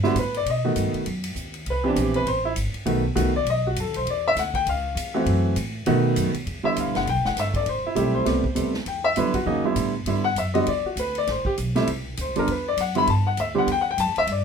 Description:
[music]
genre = jazz piano trio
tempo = 200 BPM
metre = 4/4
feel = swing 60% on 8ths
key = E minor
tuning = A4 = 441 Hz
[part]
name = warm baby grand piano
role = melody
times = 0.0-14.4 s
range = C3 to B5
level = -22 LUFS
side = equal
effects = none
[part]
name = upright bass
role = bass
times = 0.0-14.4 s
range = E1 to B2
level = -27 LUFS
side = equal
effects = none
[part]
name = swinging big-band drum kit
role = drums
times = 0.0-14.4 s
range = hi-hat, kick drum, ride cymbal, snare drum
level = -34 LUFS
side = equal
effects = none
[sound]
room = light reverb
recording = minimal, uncompressed stereo recording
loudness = -21 LUFS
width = side -6 dB against mid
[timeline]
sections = 0.0-6.5 A section; 6.5-14.4 A section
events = grand piano solo 0.0-14.4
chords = 0.5 B7; 1.7 Cmaj7; 2.9 B7; 4.1 Dadd9; 4.7 C#; 5.3 F#m7b5; 5.9 B7; 6.5 Em7; 7.7 Am7; 8.9 Em7; 11.3 Am7; 12.5 Em7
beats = 0.16 | 0.46 0.76 1.06 1.36 | 1.66 1.96 2.26 2.56 | 2.86 3.16 3.46 3.76 | 4.06 4.36 4.66 4.96 | 5.26 5.56 5.86 6.16 | 6.46 6.76 7.06 7.36 | 7.66 7.96 8.27 8.57 | 8.87 9.17 9.47 9.77 | 10.07 10.37 10.67 10.97 | 11.27 11.57 11.87 12.17 | 12.47 12.77 13.07 13.38 | 13.68 13.98 14.28

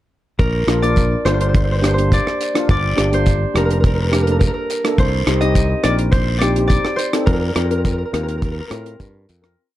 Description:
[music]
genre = calypso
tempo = 105 BPM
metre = 4/4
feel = straight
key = Bb major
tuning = A4 = 440 Hz
[part]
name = concert harp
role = melody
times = 0.4-9.8 s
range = Bb4 to Eb5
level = -22 LUFS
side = equal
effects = plate reverb
[part]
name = modern bright fingered electric bass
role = bass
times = 0.4-9.5 s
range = F1 to A2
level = -19 LUFS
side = equal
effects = none
[part]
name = deep reggae drum kit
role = drums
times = 0.4-9.6 s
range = hi-hat, kick drum, rim click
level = -18 LUFS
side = equal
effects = none
[part]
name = guiro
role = percussion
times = 0.4-9.4 s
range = none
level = -33 LUFS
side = left 5 dB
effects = none
[part]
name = steel pan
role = accompaniment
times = 0.7-9.6 s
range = Bb3 to Bb4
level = -22 LUFS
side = left 1 dB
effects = none
[sound]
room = light reverb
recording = dark, warm production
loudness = -15 LUFS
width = side -14 dB against mid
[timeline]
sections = 0.4-9.6 verse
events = fade-out 7.3-9.6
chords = 0.4 Bb; 2.7 Gm7; 5.0 Cm7; 7.3 F7sus4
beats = | 0.39 0.97 1.54 2.11 | 2.69 3.26 3.83 4.41 | 4.98 5.55 6.12 6.70 | 7.27 7.84 8.42 8.99

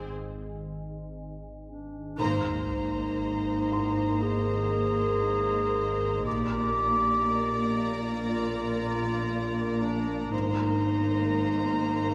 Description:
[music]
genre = cinematic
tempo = 59 BPM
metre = 4/4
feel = straight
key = unclear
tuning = A4 = 435 Hz
[part]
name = clear symphonic violin section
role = melody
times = 0.0-12.1 s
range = C5 to Bb5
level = -44 LUFS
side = equal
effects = none
[part]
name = rich symphonic viola section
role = accompaniment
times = 0.0-12.1 s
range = Bb3 to Ab4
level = -39 LUFS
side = equal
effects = none
[part]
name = deep dark ambient pad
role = sustained chords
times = 0.4-12.1 s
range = Ab4 to C6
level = -39 LUFS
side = equal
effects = chorus, built-in reverb
[part]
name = rich studio double bass section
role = bass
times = 0.0-12.1 s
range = Ab1 to Bb1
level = -38 LUFS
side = equal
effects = none
[part]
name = rich symphonic cello section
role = bass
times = 0.0-12.1 s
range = Ab2 to Bb2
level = -37 LUFS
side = equal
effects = none
[part]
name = organ-like drone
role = drone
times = 0.0-12.1 s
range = Ab1 to Bb1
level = -43 LUFS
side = equal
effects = ensemble chorus, built-in reverb
[part]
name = felt-muted upright piano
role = texture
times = 0.0-10.4 s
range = C6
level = -44 LUFS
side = equal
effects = none
[part]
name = warm clarinet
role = second line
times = 1.7-12.1 s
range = D4 to Ab4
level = -31 LUFS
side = equal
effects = none
[part]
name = clear symphonic violin section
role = second line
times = 2.2-12.1 s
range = C5 to D5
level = -40 LUFS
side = equal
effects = none
[part]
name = sub drop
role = sound effects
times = 2.2-6.3 s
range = none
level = -40 LUFS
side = equal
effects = none
[sound]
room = wet scoring stage reverb, RT60 1.7 s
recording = none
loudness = -28 LUFS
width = mono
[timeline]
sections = 0.0-2.2 A section; 2.2-12.1 B section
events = break 0.2-2.2; band accent 2.2-3.2; impact 2.2-6.3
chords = 0.0 Abadd9; 6.3 Bb; 10.3 Abadd9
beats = 0.16 1.17 | 2.19 3.21 4.22 5.24 | 6.26 7.28 8.29 9.31 | 10.33 11.34

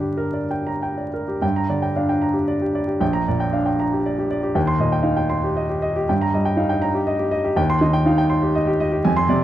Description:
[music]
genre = classical, romantic character piece for solo piano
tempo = 90-123 BPM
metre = 3/4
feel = rubato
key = G minor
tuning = A4 = 439 Hz
[part]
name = warm baby grand piano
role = solo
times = 0.0-9.4 s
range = Bb1 to C6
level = -18 LUFS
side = equal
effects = none
[sound]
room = moderate recital hall reverb, RT60 1.5 s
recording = close, detailed microphones, vinyl crackle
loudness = -18 LUFS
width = side -12 dB against mid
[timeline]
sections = 0.0-1.4 A section; 1.4-9.4 B section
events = none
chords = 0.0 Gm; 3.0 Gm/Bb; 4.6 Eb6; 6.1 Eb/G; 7.6 Cm/Eb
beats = 0.16 0.82 | 1.42 1.95 2.47 | 3.01 3.53 4.06 | 4.56 5.05 5.56 | 6.08 6.58 7.08 | 7.58 8.08 8.58 | 9.07

